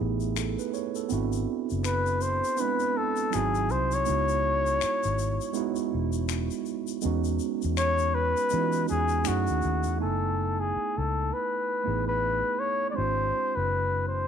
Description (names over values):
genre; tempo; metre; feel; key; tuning
R&B, neo-soul; 81 BPM; 4/4; swing 59% on 16ths; F# dorian; A4 = 440 Hz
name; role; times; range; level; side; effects
mellow tine electric piano; accompaniment; 0.0-14.3 s; F#3 to G#5; -31 LUFS; right 12 dB; medium stereo tremolo
vintage muted fingered electric bass; bass; 0.0-14.3 s; E1 to E3; -30 LUFS; left 2 dB; tube saturation
tube shaker and finger snaps; percussion; 0.2-10.0 s; none; -38 LUFS; left 16 dB; none
breathy flugelhorn; melody; 1.9-14.3 s; F#4 to D5; -27 LUFS; left 2 dB; none
room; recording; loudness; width
moderate echo chamber reverb, RT60 1.5 s, studio ambience; 1960s-style stereo with parts hard left and right; -25 LUFS; side -8 dB against mid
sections
0.0-10.0 A section; 10.0-14.3 B section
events
flugelhorn solo 0.0-10.0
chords
0.0 F#m11 (rootless); 1.1 G#7alt; 3.3 G#7b13; 4.1 C#m9; 7.0 Emaj9; 9.3 F#m7; 10.0 F#m11; 13.0 G#aug7